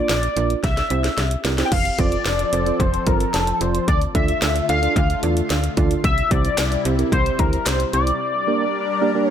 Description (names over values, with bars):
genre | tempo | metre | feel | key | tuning
synth-pop | 111 BPM | 4/4 | straight | unclear | A4 = 440 Hz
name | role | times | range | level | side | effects
octave-doubled lead | melody | 0.0-9.3 s | A4 to G5 | -22 LUFS | left 2 dB | chorus, phaser, tape echo
tine electric piano | accompaniment | 0.0-9.3 s | Bb3 to D5 | -25 LUFS | right 6 dB | none
slap-like FM bass | bass | 0.1-8.1 s | F1 to E2 | -23 LUFS | equal | none
house drum kit | drums | 0.1-8.2 s | crash cymbal, handclaps, hi-hat, kick drum, snare drum | -22 LUFS | equal | none
lush unison pad | sustained chords | 2.1-9.3 s | C3 to Bb4 | -27 LUFS | left 1 dB | chorus, phaser
room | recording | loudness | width
light reverb | none | -17 LUFS | side -9 dB against mid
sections
0.0-1.7 A section; 1.7-9.3 B section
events
drum fill 0.6-1.7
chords
0.0 Bb; 0.6 C; 1.7 F; 3.9 Dm; 6.0 C; 8.2 Gm